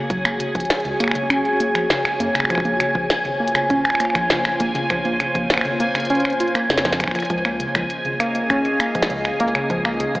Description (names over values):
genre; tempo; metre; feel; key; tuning
IDM; 100 BPM; 4/4; straight; unclear; A4 = 440 Hz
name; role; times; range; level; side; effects
granular cloud pad; sustained chords; 0.0-10.2 s; Bb3 to F5; -25 LUFS; left 1 dB; built-in reverb, vintage 12-bit sampler grit
warbly dusty pluck; arpeggios; 0.0-10.2 s; Db3 to F4; -24 LUFS; equal; chorus, cassette tape, tape echo
bubbling stepped-filter texture; texture; 0.0-10.2 s; Ab5; -24 LUFS; equal; chorus, built-in reverb
round analog bass; bass; 0.1-10.2 s; Gb1 to Gb2; -33 LUFS; equal; tube saturation
electronic kick drum; drums; 0.1-10.2 s; none; -30 LUFS; equal; none
glitchy drum kit; drums; 0.1-10.2 s; finger snaps, hi-hat, snare drum; -22 LUFS; equal; digital delay
room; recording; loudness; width
wet lush hall reverb, RT60 2.6 s; AM radio sound; -17 LUFS; side -18 dB against mid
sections
0.0-10.2 A section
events
none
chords
0.0 Gbsus2; 2.5 Bbmadd9; 7.3 Dbadd9